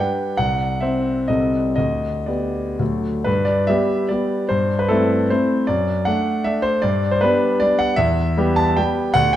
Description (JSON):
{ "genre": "classical, romantic triple-time dance for piano with dotted rhythms", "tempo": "113-164 BPM", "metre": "3/4", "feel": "rubato", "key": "G major", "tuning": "A4 = 440 Hz", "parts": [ { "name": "clear grand piano", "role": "solo", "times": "0.0-9.4 s", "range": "C2 to A5", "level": "-17 LUFS", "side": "equal", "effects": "none" } ], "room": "wet recital hall reverb, RT60 1.3 s", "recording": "dark, warm production", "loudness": "-17 LUFS", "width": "side -12 dB against mid", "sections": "0.0-3.3 A section; 3.3-9.4 B section", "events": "none", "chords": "0.4 N.C.; 1.3 Am7b5/C; 1.8 G/D; 2.8 D; 3.3 G; 4.5 Am7/G; 5.7 D/F#; 6.8 G; 8.0 Em", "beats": "| 0.39 0.82 1.28 | 1.77 2.28 2.80 | 3.27 3.68 4.10 | 4.50 4.90 5.30 | 5.67 6.06 6.45 | 6.83 7.21 7.61 | 7.98 8.37 8.78 | 9.15" }